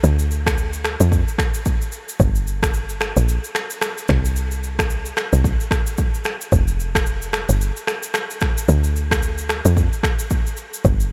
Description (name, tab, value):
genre	afrobeats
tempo	111 BPM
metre	4/4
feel	swing 58% on 16ths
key	unclear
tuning	A4 = 438 Hz
part	woody log drum bass	bass	0.0-11.1 s	F1 to F2	-21 LUFS	equal	none
part	afro-pop drum kit	drums	0.0-11.1 s	finger snaps, kick drum, rim click, shaker	-23 LUFS	equal	none
room	light reverb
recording	none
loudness	-20 LUFS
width	mono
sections	0.0-11.1 A section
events	none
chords	none